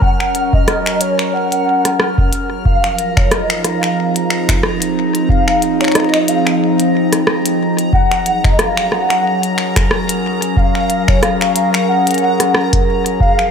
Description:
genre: IDM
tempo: 91 BPM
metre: 4/4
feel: swing 56% on 16ths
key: unclear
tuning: A4 = 441 Hz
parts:
  - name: warbly nostalgic lead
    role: melody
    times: 0.0-13.5 s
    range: Db5 to Gb5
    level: -18 LUFS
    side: left 1 dB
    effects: ensemble chorus, ping-pong delay
  - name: warbly tape-like pad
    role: sustained chords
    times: 0.0-13.5 s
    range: F3 to Bb4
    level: -17 LUFS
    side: right 1 dB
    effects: chorus, built-in reverb, phaser, vintage 12-bit sampler grit, sidechain pumping
  - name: electronic kick drum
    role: drums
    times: 0.0-13.4 s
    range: none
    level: -15 LUFS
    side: equal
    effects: none
  - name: bubbling stepped-filter texture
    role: texture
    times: 0.0-13.5 s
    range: Bb5 to F6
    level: -26 LUFS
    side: left 2 dB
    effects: chorus, built-in reverb
  - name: glitchy drum kit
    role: drums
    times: 0.2-13.5 s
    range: finger snaps, hi-hat, rim click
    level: -18 LUFS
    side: equal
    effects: ping-pong delay
room: moderate echo chamber reverb, RT60 2.7 s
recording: none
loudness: -12 LUFS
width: side -6 dB against mid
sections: 0.0-13.5 A section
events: none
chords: 0.0 Gb; 2.7 Fm7; 7.9 Gb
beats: | 0.02 0.68 1.34 2.00 | 2.65 3.31 3.97 4.63 | 5.29 5.95 6.61 7.27 | 7.93 8.59 9.25 9.91 | 10.57 11.23 11.89 12.54 | 13.20

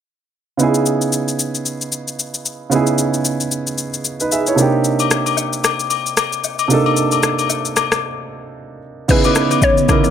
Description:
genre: amapiano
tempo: 113 BPM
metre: 4/4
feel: swing 58% on 16ths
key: unclear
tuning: A4 = 440 Hz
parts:
  - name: warm grand piano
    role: accompaniment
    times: 0.6-10.1 s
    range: C3 to E5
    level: -18 LUFS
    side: right 3 dB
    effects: none
  - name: afro-pop drum kit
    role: drums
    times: 0.6-10.1 s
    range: crash cymbal, kick drum, rim click, shaker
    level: -19 LUFS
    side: left 2 dB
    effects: none
  - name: agogo bells and woodblock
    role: percussion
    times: 5.0-10.0 s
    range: none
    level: -20 LUFS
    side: left 14 dB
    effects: none
  - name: mallet-like synth pluck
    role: melody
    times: 9.1-10.1 s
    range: B4 to C#5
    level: -17 LUFS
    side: left 2 dB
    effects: chorus, ping-pong delay
  - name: granular cloud pad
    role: sustained chords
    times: 9.4-10.1 s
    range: C#3 to D#5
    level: -21 LUFS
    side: right 1 dB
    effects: built-in reverb, sidechain pumping
room: light reverb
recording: none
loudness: -15 LUFS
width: side -9 dB against mid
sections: 0.6-9.1 A section; 9.1-10.1 B section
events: break 8.0-9.1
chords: 0.6 C#m9; 4.6 Cm9; 9.1 C#m9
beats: | 0.60 1.13 1.66 2.19 | 2.72 3.25 3.78 4.31 | 4.84 5.37 5.91 6.44 | 6.97 7.50 8.03 8.56 | 9.09 9.62

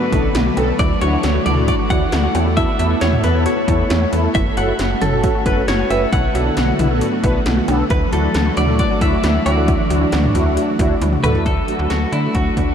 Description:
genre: synth-pop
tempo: 135 BPM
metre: 4/4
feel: straight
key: D major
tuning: A4 = 440 Hz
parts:
  - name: direct-recorded clean electric guitar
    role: melody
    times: 0.0-12.7 s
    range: E4 to F#5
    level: -22 LUFS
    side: left 1 dB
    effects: wide subtle chorus, ping-pong delay, shimmer reverb
  - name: string machine, full ensemble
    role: sustained chords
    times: 0.0-12.7 s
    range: D3 to F#4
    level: -22 LUFS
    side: equal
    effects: ensemble chorus, shimmer reverb
  - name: warbly dusty pluck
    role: arpeggios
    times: 0.0-11.4 s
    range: E4 to A4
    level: -28 LUFS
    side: right 2 dB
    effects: chorus, ping-pong delay, shimmer reverb
  - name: downlifter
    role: sound effects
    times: 0.0-0.8 s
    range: none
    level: barely audible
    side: none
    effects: none
  - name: mellow synth brass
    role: accompaniment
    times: 0.1-12.7 s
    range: A3 to B4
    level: -22 LUFS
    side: equal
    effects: chorus, phaser, shimmer reverb
  - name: slap-like FM bass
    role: bass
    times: 0.1-12.7 s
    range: F#1 to D3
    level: -20 LUFS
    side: equal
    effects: none
  - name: 80s electronic pad drums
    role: drums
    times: 0.1-12.7 s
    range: cowbell, hi-hat, kick drum, snare drum, toms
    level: -20 LUFS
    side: equal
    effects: gated reverb on snare and toms, overdrive
room: moderate huge ambient reverb, RT60 7.4 s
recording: dreamy mix soaked in reverb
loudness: -14 LUFS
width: side -8 dB against mid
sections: 0.0-11.5 A section; 11.5-12.7 B section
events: drum fill 11.0-11.5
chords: 0.0 Bm7; 0.8 Dadd9; 2.3 Asus2/E; 4.3 F#m; 6.1 Bm7; 7.9 Dadd9; 11.5 D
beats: 0.35 | 0.79 1.24 1.68 2.13 | 2.57 3.02 3.46 3.90 | 4.35 4.79 5.24 5.68 | 6.13 6.57 7.01 7.46 | 7.90 8.35 8.79 9.24 | 9.68 10.13 10.57 11.02 | 11.46 11.90 12.35

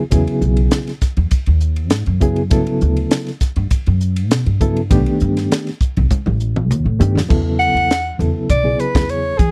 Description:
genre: electric jazz fusion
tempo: 100 BPM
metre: 4/4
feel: straight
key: unclear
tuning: A4 = 440 Hz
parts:
  - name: reed electric piano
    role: accompaniment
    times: 0.0-9.3 s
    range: C#3 to A4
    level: -21 LUFS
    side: equal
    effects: fast tremolo
  - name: upright bass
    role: bass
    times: 0.1-9.5 s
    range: A1 to E3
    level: -19 LUFS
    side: equal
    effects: none
  - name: crisp fusion drum kit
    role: drums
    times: 0.1-9.5 s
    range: crash cymbal, hi-hat, kick drum, ride cymbal, snare drum, toms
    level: -20 LUFS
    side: equal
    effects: none
  - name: breathy soprano saxophone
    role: melody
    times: 7.6-9.5 s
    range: G#4 to F#5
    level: -19 LUFS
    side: equal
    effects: slapback echo
room: little or no reverb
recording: dry, close 1970s-style studio recording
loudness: -17 LUFS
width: mono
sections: 0.0-7.3 A section; 7.3-9.5 B section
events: drum fill 6.1-7.3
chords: 0.0 Emaj9; 2.5 Gmaj9; 4.9 B7alt; 7.3 Esus4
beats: | 0.12 0.72 1.32 1.92 | 2.51 3.11 3.71 4.31 | 4.90 5.50 6.10 6.70 | 7.29 7.89 8.49 9.09

